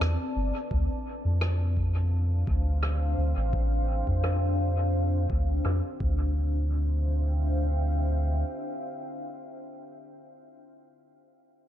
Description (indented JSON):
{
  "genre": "ambient dub",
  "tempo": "85 BPM",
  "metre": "4/4",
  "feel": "swing 53% on 16ths",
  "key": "D minor",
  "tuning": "A4 = 440 Hz",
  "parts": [
    { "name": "deep dark ambient pad", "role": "sustained chords", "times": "0.0-9.9 s", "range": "C4 to A5", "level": "-34 LUFS", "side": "left 1 dB", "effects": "chorus, built-in reverb" },
    { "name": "soft dub sub bass", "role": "bass", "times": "0.0-8.4 s", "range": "G1 to F2", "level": "-25 LUFS", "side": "equal", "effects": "tube saturation" },
    { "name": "rim click", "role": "drums", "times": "0.0-5.8 s", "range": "none", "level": "-37 LUFS", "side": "equal", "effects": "low-pass filter on snare, low-pass filter on room, dub echo" },
    { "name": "electronic kick drum", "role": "drums", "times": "0.7-6.2 s", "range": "none", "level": "-32 LUFS", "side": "equal", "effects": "overdrive" }
  ],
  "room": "studio reverb",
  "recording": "dark, warm production, lossy compression artefacts",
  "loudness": "-25 LUFS",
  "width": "side -11 dB against mid",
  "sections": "0.0-6.4 A section; 6.4-9.2 B section",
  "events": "filter sweep on drum 0.0-6.4",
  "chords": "0.0 Cmaj13; 0.7 Dm11; 6.0 Csus2/D; 6.4 Dm11"
}